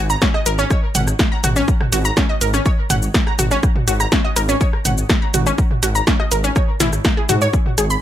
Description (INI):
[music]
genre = melodic techno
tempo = 123 BPM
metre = 4/4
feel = straight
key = unclear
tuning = A4 = 441 Hz
[part]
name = dark detuned saw bass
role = bass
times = 0.0-8.0 s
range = G#1 to G#2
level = -20 LUFS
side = equal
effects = sidechain pumping
[part]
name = analog pluck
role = arpeggios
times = 0.1-8.0 s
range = C#4 to B5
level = -20 LUFS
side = equal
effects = chorus, vintage 12-bit sampler grit, sidechain pumping, dub echo
[part]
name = punchy analog drum machine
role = drums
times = 0.1-8.0 s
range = hi-hat, rim click, shaker, snare drum, toms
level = -20 LUFS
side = right 1 dB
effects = sidechain pumping on toms, sidechain pumping on hats, sidechain pumping on perc
[part]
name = electronic kick drum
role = drums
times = 0.2-7.6 s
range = none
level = -17 LUFS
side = equal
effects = overdrive
[sound]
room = little or no reverb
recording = none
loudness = -14 LUFS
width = side -11 dB against mid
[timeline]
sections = 0.0-8.0 A section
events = none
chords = 0.0 F#sus2/G# (rootless)